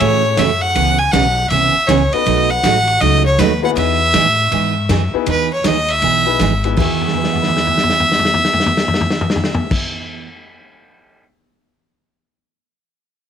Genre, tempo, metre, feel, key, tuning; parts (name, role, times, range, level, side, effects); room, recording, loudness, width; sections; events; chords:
country, western swing; 160 BPM; 4/4; swing 64% on 8ths; E major; A4 = 437 Hz
clear fiddle; melody; 0.0-9.7 s; B4 to G#5; -16 LUFS; equal
picked steel-string acoustic guitar; accompaniment; 0.0-10.3 s; B2 to G#4; -20 LUFS; right 12 dB
warm upright piano; accompaniment; 0.0-10.0 s; E2 to B6; -23 LUFS; left 13 dB
upright bass; bass; 0.0-9.7 s; G#1 to A2; -20 LUFS; left 2 dB
vintage drum kit; drums; 0.0-11.2 s; crash cymbal, hi-hat, kick drum, ride cymbal, snare drum, toms; -21 LUFS; left 2 dB
light reverb, small room ambience; 1960s-style stereo with parts hard left and right; -12 LUFS; side -8 dB against mid
0.0-5.3 A section; 5.3-6.8 B section; 6.8-9.8 C section
drum fill 7.0-9.7
0.0 F#m9; 0.8 C#m7; 2.3 B7; 3.8 Emaj7